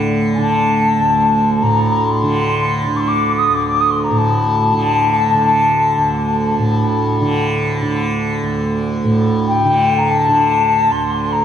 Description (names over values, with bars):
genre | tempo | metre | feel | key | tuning
world meditative, free-time meditation music | free time | none | none | unclear | A4 = 438 Hz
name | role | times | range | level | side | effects
tanpura | drone | 0.0-11.4 s | D2 to D3 | -16 LUFS | right 2 dB | none
alto ocarina | melody | 0.3-11.4 s | G5 to Eb6 | -15 LUFS | left 3 dB | diffuse ambient delay
room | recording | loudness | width
wet concert hall reverb, RT60 2.0 s | cassette tape | -13 LUFS | side -9 dB against mid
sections
0.0-11.4 A section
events
none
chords
none